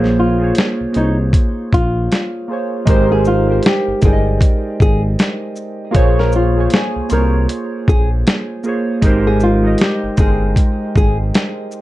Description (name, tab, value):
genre	lo-fi hip hop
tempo	78 BPM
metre	4/4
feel	swing 59% on 16ths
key	Ab major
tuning	A4 = 440 Hz
part	warbly lo-fi synth keys	accompaniment	0.0-11.8 s	Ab3 to G5	-18 LUFS	right 2 dB	chorus, phaser, cassette tape, low-pass filter
part	smooth synth bass	bass	0.0-11.3 s	G1 to C2	-17 LUFS	equal	none
part	dusty soul sampler-style drum kit	drums	0.0-11.8 s	hi-hat, kick drum, shaker, snare drum	-14 LUFS	equal	vintage 12-bit sampler grit
part	nylon-string guitar	melody	0.2-11.2 s	Eb4 to Bb4	-21 LUFS	left 2 dB	low-pass filter, tape echo
room	light reverb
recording	dark, warm production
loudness	-13 LUFS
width	side -16 dB against mid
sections	0.0-2.9 A section; 2.9-11.8 B section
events	filter sweep 0.0-2.9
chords	0.0 Bbm9; 2.9 Abmaj7; 5.9 Bbm9; 9.0 Abmaj7